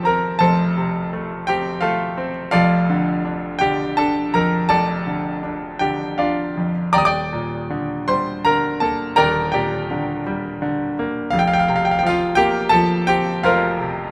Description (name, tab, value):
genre	classical, lyrical solo piano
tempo	83 BPM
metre	3/4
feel	rubato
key	Bb major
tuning	A4 = 440 Hz
part	bright grand piano	solo	0.0-14.1 s	Eb1 to Eb6	-20 LUFS	equal	none
room	light reverb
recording	none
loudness	-20 LUFS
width	mono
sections	0.0-14.1 A section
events	none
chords	0.0 Fadd9; 2.5 Bbmaj7/F; 6.9 Ebmaj7; 11.3 Fsus4